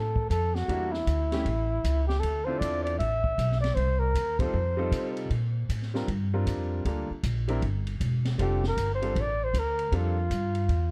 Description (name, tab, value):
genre	jazz, small-group swing and bop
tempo	156 BPM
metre	4/4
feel	swing 64% on 8ths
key	F major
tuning	A4 = 439 Hz
part	mellow flugelhorn	melody	0.0-5.2, 8.4-10.9 s	E4 to E5	-32 LUFS	equal	plate reverb
part	upright bass	bass	0.0-10.9 s	E1 to C3	-30 LUFS	equal	none
part	open jazz drum kit	drums	0.2-10.8 s	hi-hat, kick drum, ride cymbal, snare drum	-38 LUFS	equal	none
part	clear grand piano	accompaniment	0.7-10.2 s	G3 to Bb4	-36 LUFS	equal	plate reverb
room	light reverb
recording	cassette tape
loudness	-28 LUFS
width	mono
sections	0.0-10.9 A section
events	band accent 4.3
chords	0.0 F; 0.7 Em7b5; 1.5 A; 2.2 Dm9; 3.8 Cm7; 4.5 F7; 5.3 Bb6; 6.8 Gm9; 7.6 Em; 8.4 F69